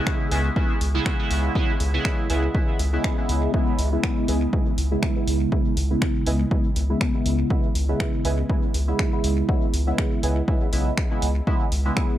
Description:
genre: dub techno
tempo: 121 BPM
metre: 4/4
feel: swing 55% on 16ths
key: C# minor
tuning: A4 = 440 Hz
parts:
  - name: resonant sweep polysynth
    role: stabs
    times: 0.0-12.2 s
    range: C#3 to E4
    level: -25 LUFS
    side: equal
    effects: chorus, phaser, sidechain pumping, dub echo
  - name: flickering grainy texture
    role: texture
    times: 0.0-3.5 s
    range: G#4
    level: -41 LUFS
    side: right 1 dB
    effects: none
  - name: electronic kick drum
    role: drums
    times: 0.1-12.1 s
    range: none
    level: -24 LUFS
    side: equal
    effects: overdrive
  - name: punchy analog drum machine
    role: drums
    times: 0.1-12.1 s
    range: finger snaps, hi-hat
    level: -31 LUFS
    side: equal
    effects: none
  - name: warbly lo-fi synth keys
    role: riff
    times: 0.3-10.3 s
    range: B4 to G#5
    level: -34 LUFS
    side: right 4 dB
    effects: chorus, tremolo, sidechain pumping, dub echo
  - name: round analog bass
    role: bass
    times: 0.3-11.9 s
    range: B1 to C#2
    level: -23 LUFS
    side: equal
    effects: sidechain pumping
room: light reverb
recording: none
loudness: -20 LUFS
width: side -12 dB against mid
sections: 0.0-3.5 A section; 3.5-12.2 A section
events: filter sweep on analog polysynth 3.5-12.2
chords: 0.0 C#m7

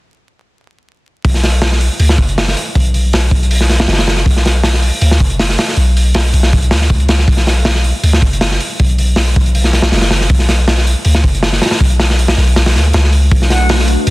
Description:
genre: drum and bass, jungle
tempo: 159 BPM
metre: 4/4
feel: straight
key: B minor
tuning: A4 = 439 Hz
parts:
  - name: long sustained 808-style bass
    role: bass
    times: 1.2-14.1 s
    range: F#1 to D2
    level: -12 LUFS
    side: equal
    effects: none
  - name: crunchy breakbeat drum kit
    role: drums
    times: 1.2-14.1 s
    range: hi-hat, kick drum, snare drum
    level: -13 LUFS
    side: equal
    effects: none
  - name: warbly tape-like pad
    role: sustained chords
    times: 13.4-14.1 s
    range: A3 to B4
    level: -18 LUFS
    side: left 1 dB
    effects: chorus, built-in reverb, phaser, vintage 12-bit sampler grit
  - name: breathy bright concert flute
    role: melody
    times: 13.5-13.7 s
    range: F#5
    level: -19 LUFS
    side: right 1 dB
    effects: vintage 12-bit sampler grit
room: small room ambience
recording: dense, heavily limited modern master, vinyl crackle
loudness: -10 LUFS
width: side -20 dB against mid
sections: 1.2-14.1 A section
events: none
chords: 1.2 Bm

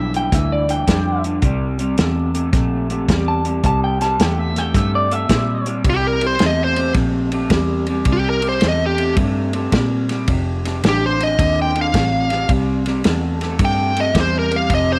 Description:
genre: electric blues shuffle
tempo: 108 BPM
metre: 4/4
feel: swing 66% on 8ths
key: C mixolydian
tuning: A4 = 441 Hz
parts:
  - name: electric guitar through a small old amp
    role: second line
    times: 0.0-5.7 s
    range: D5 to A5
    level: -24 LUFS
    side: equal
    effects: none
  - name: electric guitar through a small old amp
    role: riff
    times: 0.0-15.0 s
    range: F2 to A3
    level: -24 LUFS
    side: equal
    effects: lush chorus
  - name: vintage muted fingered electric bass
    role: bass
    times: 0.0-15.0 s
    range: F1 to Bb2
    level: -24 LUFS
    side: equal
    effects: none
  - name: warm soul drum kit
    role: drums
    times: 0.1-14.9 s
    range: hi-hat, kick drum, ride cymbal, snare drum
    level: -23 LUFS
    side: equal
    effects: none
  - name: smooth overdriven lead guitar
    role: melody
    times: 5.9-15.0 s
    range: G4 to G5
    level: -22 LUFS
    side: equal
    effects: none
room: light reverb, small room ambience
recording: none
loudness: -18 LUFS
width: mono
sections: 0.0-5.9 A section; 5.9-15.0 A section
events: clean electric guitar solo 0.0-5.9; lead electric guitar solo 5.9-15.0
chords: 0.0 G7; 1.4 C7; 10.3 F7; 12.5 C

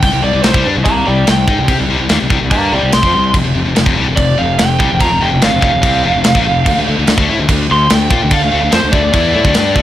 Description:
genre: hard rock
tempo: 145 BPM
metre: 4/4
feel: straight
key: unclear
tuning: A4 = 440 Hz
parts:
  - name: lead guitar through a small cranked amp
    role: melody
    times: 0.0-9.8 s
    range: C5 to C6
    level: -15 LUFS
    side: right 1 dB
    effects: overdrive
  - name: high-gain distorted guitar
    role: riff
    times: 0.0-9.8 s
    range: F2 to A4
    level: -16 LUFS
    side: left 5 dB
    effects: distortion
  - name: fuzz fingered electric bass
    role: bass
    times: 0.0-9.8 s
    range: F1 to D3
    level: -18 LUFS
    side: right 1 dB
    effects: overdrive
  - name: tight metal drum kit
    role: drums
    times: 0.0-9.8 s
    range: crash cymbal, kick drum, snare drum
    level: -15 LUFS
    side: right 1 dB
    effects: none
room: small room ambience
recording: none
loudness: -10 LUFS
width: side -12 dB against mid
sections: 0.0-9.8 A section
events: lead electric guitar solo 0.0-9.8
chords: 0.0 C5; 3.3 F5; 6.7 D5

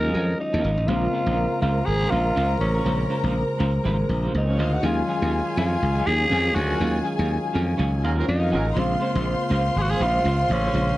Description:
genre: disco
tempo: 122 BPM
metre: 4/4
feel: swing 56% on 16ths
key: Bb minor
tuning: A4 = 440 Hz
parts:
  - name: growling tenor saxophone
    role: melody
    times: 0.0-11.0 s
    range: Db4 to Bb4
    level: -26 LUFS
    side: equal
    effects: none
  - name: clean electric guitar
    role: accompaniment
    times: 0.0-10.9 s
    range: Gb3 to Db5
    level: -31 LUFS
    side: right 3 dB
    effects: tremolo
  - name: mellow tine electric piano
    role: accompaniment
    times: 0.0-11.0 s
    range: Db3 to C5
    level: -31 LUFS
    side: left 3 dB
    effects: phaser
  - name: clear French horn section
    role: sustained chords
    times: 0.0-11.0 s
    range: Eb3 to F5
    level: -31 LUFS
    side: right 2 dB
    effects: none
  - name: slap bass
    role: bass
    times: 0.0-10.9 s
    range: Ab1 to F2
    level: -23 LUFS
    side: equal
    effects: none
  - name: dark studio string section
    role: second line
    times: 0.9-11.0 s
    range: Bb3 to C6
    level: -30 LUFS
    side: left 2 dB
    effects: none
  - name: clear horn section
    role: stabs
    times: 8.0-8.7 s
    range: Gb3 to Bb4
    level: -29 LUFS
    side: right 4 dB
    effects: none
room: light reverb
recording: dry, close 1970s-style studio recording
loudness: -20 LUFS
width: side -16 dB against mid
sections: 0.9-11.0 A section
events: band accent 6.8-8.8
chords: 0.0 Ebm11; 0.9 Bbm9; 4.8 Ebm11; 8.8 Bbm9

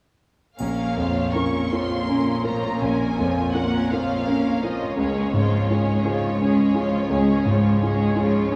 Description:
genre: classical, romantic movement for piano and orchestra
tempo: 56 BPM (dotted quarters)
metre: 12/8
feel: rubato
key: Bb minor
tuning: A4 = 439 Hz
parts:
  - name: clear grand piano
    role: melody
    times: 0.6-8.6 s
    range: Bb1 to Bb4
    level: -25 LUFS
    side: equal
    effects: none
  - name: warm studio violin section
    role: melody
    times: 0.6-8.6 s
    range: Db5 to Db6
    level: -34 LUFS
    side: equal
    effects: none
  - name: warm chamber violin section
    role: second line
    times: 0.6-8.5 s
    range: Db4 to Db5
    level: -33 LUFS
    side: equal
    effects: none
  - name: rich chamber viola section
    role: accompaniment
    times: 0.6-8.6 s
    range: F3 to Db4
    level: -29 LUFS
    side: equal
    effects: none
  - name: warm chamber cello section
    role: bass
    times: 0.6-8.6 s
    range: Db2 to Bb2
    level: -28 LUFS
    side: equal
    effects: none
  - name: triangle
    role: percussion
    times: 0.6-2.0 s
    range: none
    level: -53 LUFS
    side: equal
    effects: none
room: wet cathedral reverb, RT60 5.7 s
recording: in a vast, echoing space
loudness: -22 LUFS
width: mono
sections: 0.6-8.6 A section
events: none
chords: 0.6 Bbm; 5.0 Db

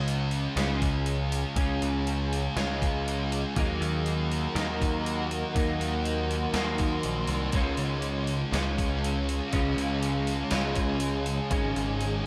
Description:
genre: rock, shoegaze and dream pop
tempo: 120 BPM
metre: 4/4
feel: straight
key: Db major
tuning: A4 = 440 Hz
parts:
  - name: deep dark ambient pad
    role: sustained chords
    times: 0.0-12.3 s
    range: Db4 to C6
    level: -37 LUFS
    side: equal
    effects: chorus, built-in reverb
  - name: overdriven semi-hollow guitar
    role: riff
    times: 0.0-12.3 s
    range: Ab2 to F4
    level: -36 LUFS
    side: equal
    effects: reverse reverb
  - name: thick fuzz guitar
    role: riff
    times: 0.0-12.3 s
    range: Ab2 to Eb4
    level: -34 LUFS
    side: equal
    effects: distortion, analog chorus
  - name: modern bright picked electric bass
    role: bass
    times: 0.0-12.3 s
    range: Ab1 to Eb2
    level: -33 LUFS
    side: equal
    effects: none
  - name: gated 80s digital drum machine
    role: drums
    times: 0.1-12.1 s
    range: hi-hat, kick drum, snare drum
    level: -35 LUFS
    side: equal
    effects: gated reverb, gated reverb snare
room: wet lush hall reverb, RT60 1.5 s, digital ambience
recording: dreamy mix soaked in reverb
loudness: -28 LUFS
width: mono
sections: 0.0-12.3 A section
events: none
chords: 0.0 Db; 3.6 Ebm; 7.5 Db; 11.5 Absus4

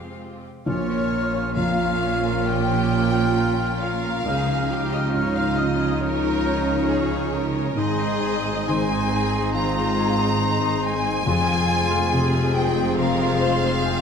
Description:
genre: cinematic, emotional film score for orchestra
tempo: 68 BPM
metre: 4/4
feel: rubato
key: Bb dorian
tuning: A4 = 440 Hz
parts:
  - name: rich studio violin section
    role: melody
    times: 0.0-14.0 s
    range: Ab4 to Bb5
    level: -27 LUFS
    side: left 2 dB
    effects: none
  - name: rich studio violin section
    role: second line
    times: 0.0-14.0 s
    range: Eb4 to C5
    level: -31 LUFS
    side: left 1 dB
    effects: none
  - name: felt-muted upright piano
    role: accompaniment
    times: 0.0-14.0 s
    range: Bb1 to Eb3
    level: -30 LUFS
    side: left 2 dB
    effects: none
  - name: rich studio viola section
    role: accompaniment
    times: 0.0-14.0 s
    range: Ab3 to Ab4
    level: -30 LUFS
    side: right 1 dB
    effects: none
  - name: concert harp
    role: arpeggios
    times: 0.0-14.0 s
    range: F2 to C6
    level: -30 LUFS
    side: left 9 dB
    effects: none
  - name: rich studio cello section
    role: bass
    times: 0.0-14.0 s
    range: F2 to Db3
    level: -28 LUFS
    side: right 5 dB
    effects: none
  - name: concert flute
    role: second line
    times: 0.7-14.0 s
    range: C6 to F6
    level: -30 LUFS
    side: left 1 dB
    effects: none
  - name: warm clarinet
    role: second line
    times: 0.7-14.0 s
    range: Eb4 to F4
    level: -31 LUFS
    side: left 1 dB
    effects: none
  - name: dark French horn section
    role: sustained chords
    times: 0.7-14.0 s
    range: F3 to F4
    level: -30 LUFS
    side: left 2 dB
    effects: none
  - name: rich studio double bass section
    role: bass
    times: 0.7-14.0 s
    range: F1 to Db2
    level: -28 LUFS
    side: right 5 dB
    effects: none
room: wet scoring stage reverb, RT60 1.6 s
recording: none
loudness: -19 LUFS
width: side -6 dB against mid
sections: 0.7-14.0 A section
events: none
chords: 0.0 Fmadd9; 0.7 Bbm; 4.3 Dbadd9; 7.8 Ab; 11.3 Fm

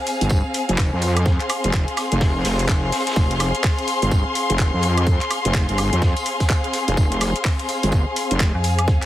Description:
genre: bass house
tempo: 126 BPM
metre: 4/4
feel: swing 61% on 16ths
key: F minor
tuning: A4 = 445 Hz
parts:
  - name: dark studio string section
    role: texture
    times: 0.0-9.1 s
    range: C4 to C6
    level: -23 LUFS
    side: left 2 dB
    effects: sidechain pumping
  - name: garage drum kit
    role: drums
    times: 0.1-9.1 s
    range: handclaps, hi-hat, shaker, woodblock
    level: -26 LUFS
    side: equal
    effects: none
  - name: vintage brush drum kit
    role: drums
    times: 0.1-9.0 s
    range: hi-hat, snare drum, tambourine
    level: -33 LUFS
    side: equal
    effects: high-pass filter on hats, high-pass filter on snare, high-pass filter on perc, high-pass filter on room
  - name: wobble bass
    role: bass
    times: 0.2-8.5 s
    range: F1 to F2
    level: -20 LUFS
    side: equal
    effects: chorus, overdrive, sidechain pumping
  - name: electronic kick drum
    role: drums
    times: 0.3-9.0 s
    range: none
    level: -19 LUFS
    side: equal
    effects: none
  - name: metallic FM bass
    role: bass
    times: 8.5-9.0 s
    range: F2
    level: -20 LUFS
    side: equal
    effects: tube saturation, sidechain pumping
room: light reverb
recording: heavily compressed radio sound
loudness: -17 LUFS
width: side -13 dB against mid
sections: 0.0-9.1 A section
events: none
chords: 0.0 Fm

